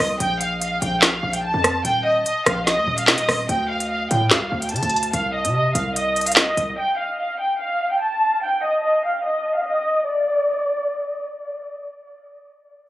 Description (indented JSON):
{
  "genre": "hip hop, drill",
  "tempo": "146 BPM",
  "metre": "4/4",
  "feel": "half-time",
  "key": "D phrygian",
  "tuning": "A4 = 440 Hz",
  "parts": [
    { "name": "warm studio violin section", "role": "melody", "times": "0.0-11.3 s", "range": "D5 to A5", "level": "-21 LUFS", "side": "equal", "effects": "low-pass filter, ping-pong delay" },
    { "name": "hard-hitting 808-style bass", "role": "bass", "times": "0.0-6.8 s", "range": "Eb1 to D3", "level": "-26 LUFS", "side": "equal", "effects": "none" },
    { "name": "drill drum kit", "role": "drums", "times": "0.0-6.7 s", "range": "handclaps, hi-hat, rim click, snare drum", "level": "-18 LUFS", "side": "equal", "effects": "none" }
  ],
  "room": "light reverb",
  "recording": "recorded on a phone in the room, club reverb, compression",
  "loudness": "-18 LUFS",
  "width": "side -15 dB against mid",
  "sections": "0.0-3.5 A section; 3.5-10.1 B section; 10.1-12.9 C section",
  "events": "filter sweep on violin section 3.5-10.1",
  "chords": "0.2 Bb5; 1.8 Eb5; 3.5 D5; 5.1 Cm; 6.8 N.C.",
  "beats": "| 0.20 0.61 1.02 1.44 | 1.85 2.26 2.67 3.08 | 3.49 3.90 4.31 4.72 | 5.13 5.54 5.96 6.37 | 6.78 7.19 7.60 8.01 | 8.42 8.83 9.24 9.65 | 10.07 10.48 10.89"
}